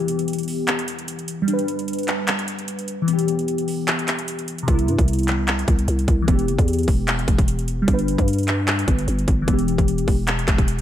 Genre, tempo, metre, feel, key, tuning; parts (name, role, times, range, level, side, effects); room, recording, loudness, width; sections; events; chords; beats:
hip hop, trap; 150 BPM; 4/4; half-time; E minor; A4 = 442 Hz
glassy digital keys; accompaniment; 0.0-10.8 s; C3 to B4; -23 LUFS; left 2 dB; chorus, low-pass filter
trap drum kit; drums; 0.1-10.8 s; handclaps, hi-hat, kick drum; -22 LUFS; equal; overdrive
growling 808-style bass; bass; 4.7-10.8 s; E1 to G2; -22 LUFS; equal
light reverb, digital ambience; -18 LUFS; side -11 dB against mid
0.0-10.8 A section
break 0.0-4.7
0.0 Em; 1.5 G; 3.1 Em; 7.9 G; 9.5 Em
0.28 0.68 1.08 | 1.48 1.88 2.28 2.68 | 3.08 3.48 3.88 4.28 | 4.68 5.08 5.48 5.88 | 6.28 6.68 7.08 7.48 | 7.88 8.28 8.68 9.08 | 9.48 9.88 10.28 10.68